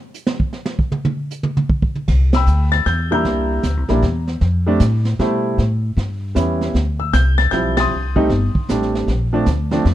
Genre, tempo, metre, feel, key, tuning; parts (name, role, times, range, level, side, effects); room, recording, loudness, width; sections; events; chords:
jazz piano trio; 154 BPM; 3/4; swing 64% on 8ths; C major; A4 = 440 Hz
jazz brush drum kit; drums; 0.1-9.9 s; brushed snare drum, crash cymbal, hi-hat, kick drum, ride cymbal, snare drum, toms; -22 LUFS; right 2 dB
upright bass; bass; 2.1-9.9 s; G1 to B2; -17 LUFS; equal
warm concert grand piano; melody; 2.3-9.8 s; F3 to A6; -19 LUFS; equal
light reverb; dark, warm production; -16 LUFS; side -13 dB against mid
0.0-2.1 A section; 2.1-9.9 B section
drum solo 0.0-2.1; band accent 2.3, 7.7
0.0 N.C.; 2.1 Cmaj7; 3.3 C7; 4.4 F; 5.6 A7; 6.7 Dm11; 7.9 Cm69; 9.1 Bbmaj7